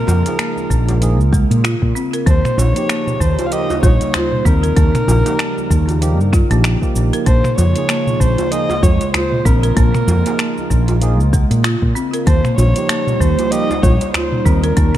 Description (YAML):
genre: organic downtempo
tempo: 96 BPM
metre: 4/4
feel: swing 57% on 16ths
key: Bb dorian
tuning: A4 = 437 Hz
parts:
  - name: dark kamancheh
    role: melody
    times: 0.0-15.0 s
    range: Bb4 to F5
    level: -22 LUFS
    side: equal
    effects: tape echo
  - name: warbly tape-like pad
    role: sustained chords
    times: 0.0-15.0 s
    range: Db3 to F4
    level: -24 LUFS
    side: right 1 dB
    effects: chorus, built-in reverb, sidechain pumping
  - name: woody fretless electric bass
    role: bass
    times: 0.1-14.9 s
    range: Bb1 to Bb2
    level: -14 LUFS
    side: equal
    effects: none
  - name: afro-pop drum kit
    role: drums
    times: 0.1-15.0 s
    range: cabasa, finger snaps, hi-hat, toms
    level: -22 LUFS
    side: equal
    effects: studio reverb
  - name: djembe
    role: percussion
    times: 0.1-14.3 s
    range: none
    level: -26 LUFS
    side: right 1 dB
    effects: none
  - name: bright tine electric piano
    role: accompaniment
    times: 0.2-13.7 s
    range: F3 to Ab4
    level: -25 LUFS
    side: right 5 dB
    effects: sidechain pumping, digital delay
  - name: folk marimba with hard mallets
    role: arpeggios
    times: 0.4-14.9 s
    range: G3 to Bb4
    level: -23 LUFS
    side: left 2 dB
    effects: digital delay
  - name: electronic kick drum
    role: drums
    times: 0.7-14.9 s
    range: none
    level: -16 LUFS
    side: equal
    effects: studio reverb
room: light reverb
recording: dark, warm production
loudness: -13 LUFS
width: side -12 dB against mid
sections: 0.0-15.0 A section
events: none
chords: 0.0 Bbm7; 2.3 Eb7; 7.3 Bbm7; 12.3 Eb7